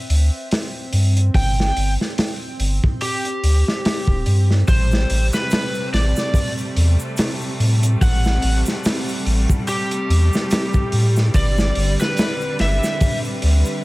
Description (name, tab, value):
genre	trip hop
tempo	72 BPM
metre	4/4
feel	swing 56% on 16ths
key	A minor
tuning	A4 = 440 Hz
part	bowed-like drone	texture	0.0-13.8 s	C4	-32 LUFS	right 2 dB	built-in reverb
part	soft dub sub bass	bass	0.1-13.6 s	D1 to A2	-16 LUFS	equal	none
part	crunchy breakbeat drum kit	drums	0.1-13.6 s	hi-hat, kick drum, snare drum	-21 LUFS	equal	none
part	overdriven slide guitar	melody	1.4-13.2 s	G4 to G5	-26 LUFS	equal	tape echo
part	bright symphonic string section	sustained chords	4.7-13.8 s	C3 to B4	-27 LUFS	equal	none
part	egg shaker	percussion	4.7-13.8 s	none	-36 LUFS	right 1 dB	none
room	small room ambience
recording	vinyl crackle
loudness	-16 LUFS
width	side -20 dB against mid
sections	0.0-13.8 A section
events	none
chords	0.0 G5; 4.7 Am7; 11.3 G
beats	0.51 | 1.34 2.18 3.01 3.85 | 4.68 5.51 6.34 7.18 | 8.01 8.85 9.68 10.51 | 11.35 12.18 13.01